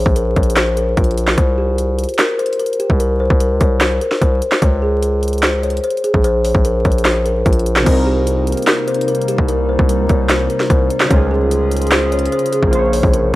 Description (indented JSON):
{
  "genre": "hip hop, trap",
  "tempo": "148 BPM",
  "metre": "4/4",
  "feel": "half-time",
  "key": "C phrygian",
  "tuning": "A4 = 440 Hz",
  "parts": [
    { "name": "kalimba", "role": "melody", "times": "0.0-13.3 s", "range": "F4 to Db5", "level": "-18 LUFS", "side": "left 1 dB", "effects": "low-pass filter" },
    { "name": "distorted 808-style bass", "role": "bass", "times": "0.0-13.3 s", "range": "Bb1 to Db2", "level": "-18 LUFS", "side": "equal", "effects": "distortion" },
    { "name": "trap drum kit", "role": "drums", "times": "0.1-13.2 s", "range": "crash cymbal, handclaps, hi-hat, kick drum, snare drum", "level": "-16 LUFS", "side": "equal", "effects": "overdrive" },
    { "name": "warbly lo-fi synth keys", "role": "accompaniment", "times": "7.8-13.4 s", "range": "C3 to Db5", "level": "-22 LUFS", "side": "right 2 dB", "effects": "chorus, low-pass filter" },
    { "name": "warbly tape-like pad", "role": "sustained chords", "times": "8.4-13.4 s", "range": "C3 to Ab4", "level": "-24 LUFS", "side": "equal", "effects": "chorus, built-in reverb" }
  ],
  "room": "light reverb, digital ambience",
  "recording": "vinyl crackle",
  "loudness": "-13 LUFS",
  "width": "side -17 dB against mid",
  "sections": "0.0-7.9 A section; 7.9-13.4 B section",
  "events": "none",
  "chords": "0.0 Bb5; 1.4 C5; 4.6 Db5; 6.2 Bb5; 7.9 Cm7; 11.1 Db; 12.7 Bbmadd9"
}